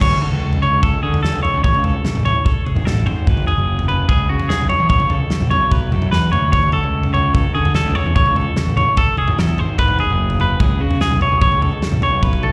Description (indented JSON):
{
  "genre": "math rock and midwest emo",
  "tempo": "147 BPM",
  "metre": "4/4",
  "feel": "straight",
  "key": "A major",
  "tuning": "A4 = 441 Hz",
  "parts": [
    { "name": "clean electric guitar", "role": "arpeggios", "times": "0.0-12.5 s", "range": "F#4 to C#5", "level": "-21 LUFS", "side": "equal", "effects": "spring reverb" },
    { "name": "fuzz picked electric bass", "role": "bass", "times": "0.0-12.5 s", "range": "F#1 to D3", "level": "-21 LUFS", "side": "equal", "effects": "overdrive" },
    { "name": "loose indie drum kit", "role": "drums", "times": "0.0-12.5 s", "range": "crash cymbal, kick drum, snare drum, toms", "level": "-21 LUFS", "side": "equal", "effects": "none" }
  ],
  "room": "light reverb",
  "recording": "live gig heard through the venue's PA, recital hall reverb",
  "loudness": "-17 LUFS",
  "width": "mono",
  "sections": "0.0-12.5 A section",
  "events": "drum fill 12.2",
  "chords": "0.0 D5; 1.6 Amaj7; 3.1 F#sus24; 4.1 C#5; 4.9 A; 5.5 Bm7; 6.5 D5; 8.2 Amaj7; 9.6 F#sus24; 10.6 C#5; 11.4 A",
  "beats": "| 0.01 0.42 0.83 1.23 | 1.64 2.05 2.46 2.86 | 3.27 3.68 4.08 4.49 | 4.90 5.31 5.72 6.12 | 6.53 6.94 7.35 7.75 | 8.16 8.57 8.98 9.38 | 9.79 10.20 10.61 11.01 | 11.42 11.83 12.23"
}